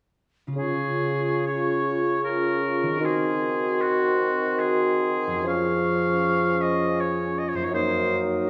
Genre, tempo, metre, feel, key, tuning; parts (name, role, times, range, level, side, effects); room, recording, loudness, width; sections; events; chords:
classical; 64-85 BPM; 3/4; rubato; Db major; A4 = 440 Hz
concert harp; arpeggios; 0.5-8.5 s; F2 to Bb4; -34 LUFS; equal
clear oboe; second line; 0.6-8.5 s; Gb4 to F5; -30 LUFS; equal
mellow clarinet; second line; 0.6-8.5 s; F4 to Bb4; -32 LUFS; equal
mellow concert flute; second line; 0.6-8.5 s; C6 to Eb6; -33 LUFS; equal
dark bassoon; accompaniment; 0.6-8.5 s; Db3 to Gb3; -30 LUFS; equal
mellow French horn section; sustained chords; 0.6-8.5 s; Bb3 to Gb4; -32 LUFS; equal
wet scoring stage reverb, RT60 1.6 s; -24 LUFS; mono
0.6-8.5 A section
0.6 Db; 3.0 Ab7/Eb; 5.5 Db/F; 7.7 Ebm/Gb